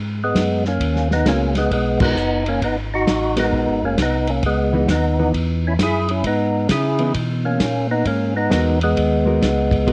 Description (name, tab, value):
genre	soul jazz organ trio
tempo	132 BPM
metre	4/4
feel	swing 65% on 8ths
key	G# minor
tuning	A4 = 440 Hz
part	mellow tonewheel organ	bass	0.0-9.9 s	F#1 to C#3	-24 LUFS	equal	slow rotary speaker
part	percussive tonewheel organ	melody	0.2-9.9 s	G#3 to G#4	-22 LUFS	equal	slow rotary speaker, overdrive
part	warm soul drum kit	drums	0.3-9.9 s	crash cymbal, hi-hat, kick drum, ride cymbal, snare drum	-26 LUFS	equal	none
part	hollow-body jazz guitar	accompaniment	1.3-9.9 s	E3 to A#4	-25 LUFS	equal	none
room	light reverb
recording	worn, warbling old tape, cassette tape, warbly pitch drift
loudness	-19 LUFS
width	mono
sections	0.0-9.9 A section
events	band accent 1.9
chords	0.0 G#m9; 4.4 C#m9; 8.1 G#m9